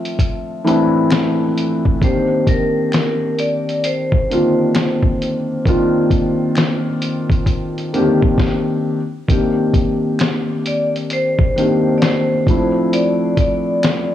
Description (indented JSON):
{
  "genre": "lo-fi hip hop",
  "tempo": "66 BPM",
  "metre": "4/4",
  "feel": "swing 63% on 16ths",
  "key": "C dorian",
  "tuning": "A4 = 440 Hz",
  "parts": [
    { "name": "vibraphone with medium hard mallets", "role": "melody", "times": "0.0-14.1 s", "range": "Bb4 to E5", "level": "-22 LUFS", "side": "equal", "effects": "low-pass filter, tape echo" },
    { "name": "felt-muted upright piano", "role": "accompaniment", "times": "0.0-14.1 s", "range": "D3 to G4", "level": "-17 LUFS", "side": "left 1 dB", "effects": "cassette tape, low-pass filter" },
    { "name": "lo-fi sampler-style drum kit", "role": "drums", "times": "0.1-14.1 s", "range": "hi-hat, kick drum, snare drum", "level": "-18 LUFS", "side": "equal", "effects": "vintage 12-bit sampler grit" },
    { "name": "finger snap", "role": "percussion", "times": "1.1-14.1 s", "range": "none", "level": "-33 LUFS", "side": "left 2 dB", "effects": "none" }
  ],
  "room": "studio ambience",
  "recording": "dry, gritty hardware recording, cassette tape, small room ambience",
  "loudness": "-14 LUFS",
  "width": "side -11 dB against mid",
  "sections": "0.0-9.3 A section; 9.3-14.1 B section",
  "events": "stop 8.4-9.3",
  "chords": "0.0 Dm9; 2.0 Cm9; 12.5 Dm9"
}